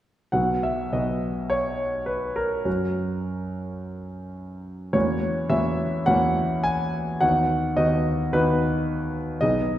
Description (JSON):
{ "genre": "classical, romantic character piece for solo piano", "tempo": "98-114 BPM", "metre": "4/4", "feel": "rubato", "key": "B major", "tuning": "A4 = 440 Hz", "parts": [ { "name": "clear concert grand piano", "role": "solo", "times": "0.3-9.8 s", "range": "B1 to G#5", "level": "-22 LUFS", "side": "equal", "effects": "none" } ], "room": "wet scoring stage reverb, RT60 1.5 s", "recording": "heard from further back in the room", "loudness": "-22 LUFS", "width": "side -12 dB against mid", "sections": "0.3-9.8 A section", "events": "none", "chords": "0.3 B; 2.7 F#; 5.0 F#7/E; 7.2 B/D#", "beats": "| 0.32 0.92 1.51 2.08 | 2.66 3.22 3.79 4.37 | 4.95 5.51 6.08 6.66 | 7.23 7.78 8.33 8.88 | 9.41" }